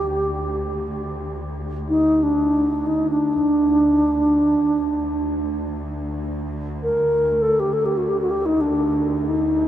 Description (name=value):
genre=Arabic maqam ensemble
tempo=free time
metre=none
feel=none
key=D maqam hijaz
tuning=A4 = 440 Hz
part: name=reedy wooden-headed alto flute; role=melody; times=0.0-9.7 s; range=D4 to Bb4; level=-19 LUFS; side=equal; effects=none
part: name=dark studio cello section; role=drone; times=0.0-9.7 s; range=D2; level=-29 LUFS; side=equal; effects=none
room=wet huge ambient reverb, RT60 8.2 s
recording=in a vast, echoing space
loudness=-18 LUFS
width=side -11 dB against mid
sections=0.0-9.7 A section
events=none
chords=none